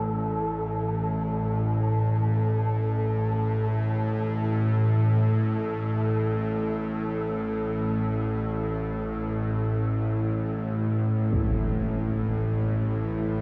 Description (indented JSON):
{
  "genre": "dark ambient drone",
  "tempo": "free time",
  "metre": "none",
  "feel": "none",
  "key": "unclear",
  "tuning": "A4 = 438 Hz",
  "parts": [
    { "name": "bowed-like drone", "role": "drone", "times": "0.0-13.4 s", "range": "A1 to A2", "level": "-27 LUFS", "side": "equal", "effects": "built-in reverb" },
    { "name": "wind-like tuned noise texture", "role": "texture", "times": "0.0-13.4 s", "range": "A4", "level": "-37 LUFS", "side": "equal", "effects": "built-in reverb" },
    { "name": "impact", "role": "percussion", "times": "11.3-11.5 s", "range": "none", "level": "-34 LUFS", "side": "equal", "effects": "low-pass filter on sfx" }
  ],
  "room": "wet huge ambient reverb, RT60 8.3 s",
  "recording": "in a vast, echoing space",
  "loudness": "-26 LUFS",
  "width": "mono",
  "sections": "0.0-13.4 A section",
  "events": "fade-in on impacts and reversed cymbals 0.0-13.4; fade-out on synth texture 0.0-13.4",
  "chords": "0.0 Asus4",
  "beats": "free time"
}